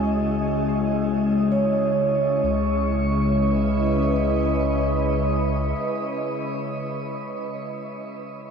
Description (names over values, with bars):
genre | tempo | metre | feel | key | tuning
ambient | free time | none | none | C# minor | A4 = 441 Hz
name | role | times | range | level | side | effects
glassy FM pad | sustained chords | 0.0-7.7 s | C#3 to D#5 | -25 LUFS | equal | ensemble chorus, built-in reverb
vibraphone with soft mallets | arpeggios | 0.0-8.5 s | G#3 to C#5 | -25 LUFS | equal | ping-pong delay
warm sub bass | bass | 0.0-5.7 s | C#2 | -28 LUFS | equal | none
analog drone | drone | 0.0-7.1 s | C#3 to G#3 | -31 LUFS | left 1 dB | chorus
drifting glass-harmonics texture | texture | 0.0-2.5 s | A5 | -51 LUFS | right 3 dB | chorus, built-in reverb
room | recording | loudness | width
wet shimmer reverb, RT60 6.6 s | nothing above 10.7 kHz | -20 LUFS | side -6 dB against mid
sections
0.0-2.5 A section; 2.5-6.9 B section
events
none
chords
0.0 A/C#; 2.5 C#m7